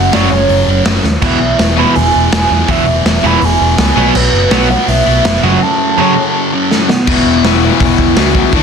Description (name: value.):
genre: punk rock.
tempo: 164 BPM.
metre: 4/4.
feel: straight.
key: unclear.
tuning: A4 = 440 Hz.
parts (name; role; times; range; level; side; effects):
hollow clarinet-like synth lead; melody; 0.0-8.6 s; B3 to B5; -15 LUFS; right 3 dB; chorus, digital delay.
fuzz guitar; riff; 0.0-8.6 s; E2 to D4; -15 LUFS; left 1 dB; distortion.
overdriven picked electric bass; bass; 0.0-8.6 s; E1 to E2; -15 LUFS; equal; none.
biting overdriven guitar; riff; 0.1-6.1 s; E2 to B3; -15 LUFS; right 12 dB; none.
cranked stack guitar; riff; 0.1-8.6 s; E2 to D4; -16 LUFS; left 15 dB; overdrive.
raw garage drum kit; drums; 0.1-8.6 s; crash cymbal, hi-hat, kick drum, snare drum, splash cymbal; -15 LUFS; equal; none.
room: light reverb.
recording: dense, heavily limited modern master.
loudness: -8 LUFS.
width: side -6 dB against mid.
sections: 0.0-7.1 A section; 7.1-8.6 B section.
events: drum fill 1.0, 6.7-7.1.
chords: 0.0 F#5; 1.2 E; 4.0 B5; 5.4 F#m; 7.1 E5.